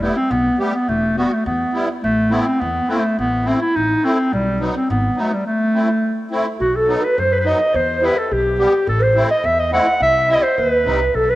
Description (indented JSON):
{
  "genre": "klezmer",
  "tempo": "105 BPM",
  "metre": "2/4",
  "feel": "straight",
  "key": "A dorian sharp4",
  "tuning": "A4 = 440 Hz",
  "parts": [
    { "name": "mellow clarinet", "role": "melody", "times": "0.0-11.4 s", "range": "G3 to F#5", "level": "-17 LUFS", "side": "equal", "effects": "cassette tape" },
    { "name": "musette accordion", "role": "accompaniment", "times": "0.0-11.0 s", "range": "F#3 to G4", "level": "-24 LUFS", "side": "equal", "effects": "cassette tape" },
    { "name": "upright bass", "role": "bass", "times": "0.0-11.4 s", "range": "E1 to F#2", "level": "-24 LUFS", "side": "equal", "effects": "none" },
    { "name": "breathy mellow bansuri", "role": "second line", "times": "6.6-11.4 s", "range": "F#4 to F#5", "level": "-21 LUFS", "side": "right 1 dB", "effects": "cassette tape" }
  ],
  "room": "moderate lush hall reverb, RT60 2.9 s",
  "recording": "home recording on cassette",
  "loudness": "-15 LUFS",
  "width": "side -16 dB against mid",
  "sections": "0.0-6.6 A section; 6.6-11.4 B section",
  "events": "none",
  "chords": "0.0 Em; 2.0 Am; 4.3 B; 5.5 Am; 6.6 B; 7.7 Em; 8.9 Am; 10.0 C"
}